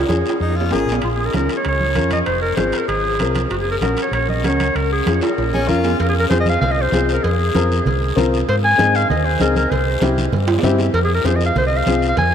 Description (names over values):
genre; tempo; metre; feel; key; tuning
latin, cumbia; 194 BPM; 4/4; straight; unclear; A4 = 436 Hz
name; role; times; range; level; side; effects
warm clarinet; melody; 0.0-12.3 s; F4 to Ab5; -20 LUFS; equal; none
hollow-body short-scale fingered electric bass; bass; 0.0-12.3 s; F1 to Ab2; -20 LUFS; equal; none
dark upright piano; accompaniment; 0.1-12.1 s; C4 to Bb4; -21 LUFS; left 3 dB; none
congas; percussion; 0.1-12.3 s; none; -26 LUFS; right 3 dB; none
guiro; percussion; 0.1-12.3 s; none; -33 LUFS; left 7 dB; none
timbales and cowbell; percussion; 0.1-12.3 s; none; -27 LUFS; right 4 dB; none
bright tenor saxophone; second line; 0.4-1.0, 5.5-6.0 s; Db4 to Ab4; -29 LUFS; left 3 dB; none
room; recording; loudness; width
wet cathedral reverb, RT60 5.7 s; in a vast, echoing space; -15 LUFS; side -8 dB against mid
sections
0.0-6.0 A section; 6.0-12.3 B section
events
drum fill 0.0-1.0, 5.2-6.0, 10.5-10.9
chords
0.0 Db; 1.0 Bbm; 2.3 Fm; 3.5 Gb; 4.8 Db; 5.4 Bbm; 6.0 Fm; 8.5 Ab; 9.7 C; 10.9 Fm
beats
0.10 0.41 0.72 | 1.03 1.34 1.65 1.96 | 2.27 2.58 2.89 3.21 | 3.52 3.83 4.14 4.45 | 4.76 5.07 5.38 5.69 | 6.00 6.31 6.62 6.93 | 7.24 7.55 7.86 8.17 | 8.47 8.79 9.09 9.40 | 9.71 10.02 10.33 10.64 | 10.95 11.26 11.57 11.88 | 12.19